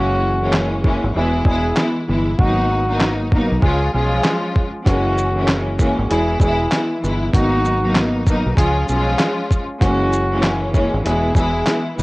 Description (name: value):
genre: hip hop, boom-bap hip-hop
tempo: 97 BPM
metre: 4/4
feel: swing 61% on 16ths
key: unclear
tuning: A4 = 441 Hz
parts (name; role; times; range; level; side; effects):
- trumpet with bucket mute; melody; 0.0-11.8 s; F#4 to G#4; -23 LUFS; equal; high-pass filter, low-pass filter, cassette tape, tape echo
- warm studio string section; accompaniment; 0.0-12.0 s; E3 to E#4; -20 LUFS; equal; cassette tape, high-pass filter, low-pass filter
- deep dub fingered electric bass; bass; 0.0-12.0 s; E1 to C#2; -21 LUFS; equal; none
- dusty soul sampler-style drum kit; drums; 0.5-12.0 s; handclaps, hi-hat, kick drum, shaker, snare drum; -18 LUFS; equal; overdrive, cassette tape
room: little or no reverb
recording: home recording on cassette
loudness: -15 LUFS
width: side -22 dB against mid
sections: 0.0-12.0 A section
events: break 0.0-4.9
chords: 0.0 F#7; 1.2 E; 2.4 G#m7; 3.6 C#; 4.9 F#7; 6.1 E; 7.3 G#m7; 8.6 C#; 9.8 F#7; 11.0 E